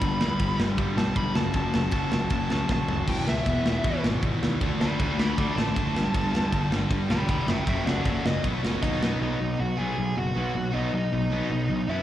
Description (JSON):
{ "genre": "punk rock", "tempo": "157 BPM", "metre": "4/4", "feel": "straight", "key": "unclear", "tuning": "A4 = 438 Hz", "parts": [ { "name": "high-gain lead guitar", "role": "melody", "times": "0.0-12.0 s", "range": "D#4 to D6", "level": "-31 LUFS", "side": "right 1 dB", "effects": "distortion, plate reverb, slapback echo, tape echo" }, { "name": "crunchy overdriven guitar", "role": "riff", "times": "0.0-12.0 s", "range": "E2 to D4", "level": "-28 LUFS", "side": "left 4 dB", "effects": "none" }, { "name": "distorted electric guitar", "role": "riff", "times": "0.0-12.0 s", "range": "E2 to D4", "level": "-35 LUFS", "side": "right 10 dB", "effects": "distortion, slapback echo" }, { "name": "fuzz picked electric bass", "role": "bass", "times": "0.0-12.0 s", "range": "E1 to G2", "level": "-30 LUFS", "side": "right 1 dB", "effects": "overdrive" }, { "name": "tight metal drum kit", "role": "drums", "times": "0.0-9.1 s", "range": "crash cymbal, kick drum, ride cymbal, snare drum, toms", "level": "-29 LUFS", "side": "equal", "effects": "none" }, { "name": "thick fuzz guitar", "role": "riff", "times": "3.1-9.2 s", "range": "E2 to D4", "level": "-34 LUFS", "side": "right 2 dB", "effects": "none" } ], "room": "moderate club reverb, RT60 0.6 s", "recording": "live gig heard through the venue's PA, recital hall reverb", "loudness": "-23 LUFS", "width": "side -12 dB against mid", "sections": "0.0-9.2 A section; 9.2-12.0 B section", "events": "lead electric guitar solo 0.0-9.2; drum fill 2.7-3.1", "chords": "0.0 G; 1.4 F#5; 3.1 E; 4.6 D5; 6.0 G; 7.5 F#5; 8.4 B" }